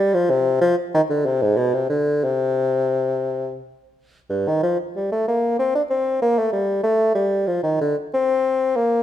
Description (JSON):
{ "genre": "classical, baroque-style fantasia for unaccompanied bassoon", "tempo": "85-98 BPM", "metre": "3/4", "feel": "rubato", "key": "C minor", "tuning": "A4 = 440 Hz", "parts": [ { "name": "mellow bassoon", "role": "solo", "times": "0.0-9.0 s", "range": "G2 to D4", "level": "-18 LUFS", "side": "left 1 dB", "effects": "none" } ], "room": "wet stone room reverb, RT60 1.2 s", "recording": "none", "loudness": "-18 LUFS", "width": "side -11 dB against mid", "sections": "0.0-4.3 A section; 4.3-9.0 A section", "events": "none", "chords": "none", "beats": "| 0.29 0.94 1.58 | 2.24 2.92 3.60 | 4.30 4.96 5.59 | 6.22 6.84 7.47 | 8.13 8.76" }